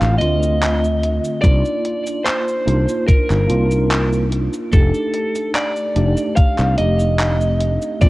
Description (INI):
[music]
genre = vaporwave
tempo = 73 BPM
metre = 4/4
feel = straight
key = unclear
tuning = A4 = 440 Hz
[part]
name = lightly driven lead guitar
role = melody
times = 0.0-8.1 s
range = A4 to F5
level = -21 LUFS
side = equal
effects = tape echo
[part]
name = mellow tine electric piano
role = accompaniment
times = 0.0-8.1 s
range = D3 to G4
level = -22 LUFS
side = equal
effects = medium stereo tremolo, ensemble chorus
[part]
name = fretless electric bass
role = bass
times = 0.0-8.1 s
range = F1 to D2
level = -17 LUFS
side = equal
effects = none
[part]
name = gated 80s digital drum machine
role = drums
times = 0.0-8.1 s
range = cabasa, handclaps, hi-hat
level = -25 LUFS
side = equal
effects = gated reverb
[part]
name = electronic kick drum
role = drums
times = 1.4-8.1 s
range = none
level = -12 LUFS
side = equal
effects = none
[sound]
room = little or no reverb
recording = worn, warbling old tape, cassette tape, warbly pitch drift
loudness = -15 LUFS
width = side -19 dB against mid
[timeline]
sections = 0.0-8.1 A section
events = none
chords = 0.0 Dm7; 1.4 Cm11; 4.7 F13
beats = 0.62 | 1.44 2.27 3.09 3.91 | 4.73 5.55 6.37 7.20 | 8.02